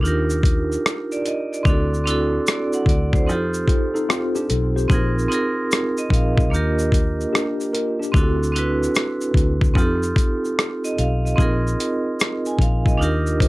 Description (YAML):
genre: lo-fi hip hop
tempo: 74 BPM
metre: 4/4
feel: swing 65% on 16ths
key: Eb major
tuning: A4 = 439 Hz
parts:
  - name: vibraphone with hard mallets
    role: accompaniment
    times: 0.0-13.5 s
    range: Bb3 to Ab5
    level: -22 LUFS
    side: right 2 dB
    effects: low-pass filter
  - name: vintage muted fingered electric bass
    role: bass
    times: 0.0-13.5 s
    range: Bb1 to F2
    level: -22 LUFS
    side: equal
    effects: none
  - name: boom bap sampler-style drum kit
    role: drums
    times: 0.1-13.5 s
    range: hi-hat, kick drum, rim click, shaker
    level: -19 LUFS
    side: equal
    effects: overdrive
  - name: mellow tine electric piano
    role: second line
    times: 3.7-8.4, 13.4-13.5 s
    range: C4 to C5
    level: -27 LUFS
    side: left 5 dB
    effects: medium stereo tremolo, low-pass filter, analog delay
room: little or no reverb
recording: none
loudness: -18 LUFS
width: side -20 dB against mid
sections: 0.0-13.5 A section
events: none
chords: 0.0 Ebmaj7; 1.7 D7; 3.3 F7; 4.9 Bb7sus4; 6.5 Ebmaj7; 8.1 D7; 9.8 F7; 11.4 Bb7sus4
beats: 0.03 0.84 | 1.65 2.46 3.27 4.08 | 4.89 5.71 6.52 7.33 | 8.14 8.95 9.76 10.57 | 11.38 12.19 13.00